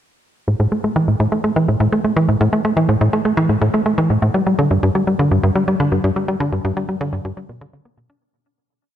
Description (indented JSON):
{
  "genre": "ambient",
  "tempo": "124 BPM",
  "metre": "4/4",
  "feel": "straight",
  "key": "G major",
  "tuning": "A4 = 438 Hz",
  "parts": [
    { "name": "tight sequencer bass", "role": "solo", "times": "0.5-8.2 s", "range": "G2 to D4", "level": "-15 LUFS", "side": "equal", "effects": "tape echo" }
  ],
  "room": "moderate plate reverb, RT60 2.9 s",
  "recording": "none",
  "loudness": "-15 LUFS",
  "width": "side -10 dB against mid",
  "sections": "0.5-8.2 A section",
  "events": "fade-out 5.6-8.2",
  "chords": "none"
}